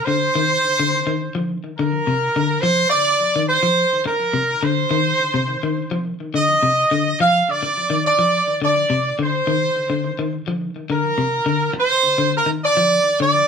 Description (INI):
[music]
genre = afrobeat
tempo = 105 BPM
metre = 4/4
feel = straight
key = unclear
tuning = A4 = 439 Hz
[part]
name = bright horn section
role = melody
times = 0.1-13.5 s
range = Bb4 to F5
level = -17 LUFS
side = right 2 dB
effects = none
[part]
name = electric guitar at the edge of break-up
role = arpeggios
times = 0.1-13.4 s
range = C3 to F3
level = -22 LUFS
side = left 4 dB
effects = analog delay
[sound]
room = moderate studio reverb, RT60 0.7 s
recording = band playing live in one room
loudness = -16 LUFS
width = side -6 dB against mid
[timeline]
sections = 0.0-13.5 A section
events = none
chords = 0.0 Cmadd9